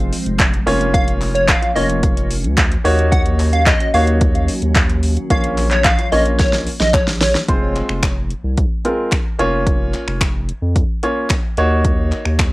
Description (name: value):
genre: dance-pop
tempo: 110 BPM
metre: 4/4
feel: straight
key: Bb minor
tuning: A4 = 441 Hz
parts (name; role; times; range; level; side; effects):
- clear baby grand piano; accompaniment; 0.0-12.4 s; Ab3 to Db5; -20 LUFS; equal; sidechain pumping, cassette tape
- glassy FM pad; sustained chords; 0.0-7.5 s; Eb3 to Gb4; -28 LUFS; equal; ensemble chorus, built-in reverb, phaser, sidechain pumping, cassette tape
- saturated sub bass; bass; 0.0-12.5 s; F1 to F2; -19 LUFS; equal; sidechain pumping
- deep house drum kit; drums; 0.1-12.5 s; finger snaps, handclaps, hi-hat, kick drum, snare drum; -17 LUFS; equal; overdrive, cassette tape
- group handclap; percussion; 0.4-12.5 s; none; -28 LUFS; left 2 dB; none
- plucky unison lead; melody; 0.9-7.3 s; Db5 to Gb5; -19 LUFS; equal; cassette tape, tape echo
room: light reverb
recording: home recording on cassette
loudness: -14 LUFS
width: side -20 dB against mid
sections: 0.0-7.5 A section; 7.5-12.5 B section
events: drum fill 6.4-7.5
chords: 0.0 Fm; 0.7 Bbm/F; 2.8 Ebm7; 5.3 Bbm; 7.5 Fm; 9.4 Bbm/F; 11.6 Ebm7